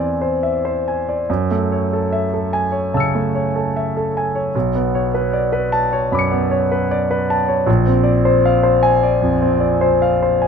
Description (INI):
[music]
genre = classical, impressionist solo piano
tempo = 68-79 BPM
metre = 4/4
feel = rubato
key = unclear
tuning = A4 = 440 Hz
[part]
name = warm concert grand piano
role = solo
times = 0.0-10.5 s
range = Bb1 to C#7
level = -15 LUFS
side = equal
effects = none
[sound]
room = light reverb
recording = close, detailed microphones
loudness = -15 LUFS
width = side -6 dB against mid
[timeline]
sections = 0.0-10.5 A section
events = none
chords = 0.0 Eaug7; 1.3 F#m9; 4.5 Bm9; 7.7 Bb9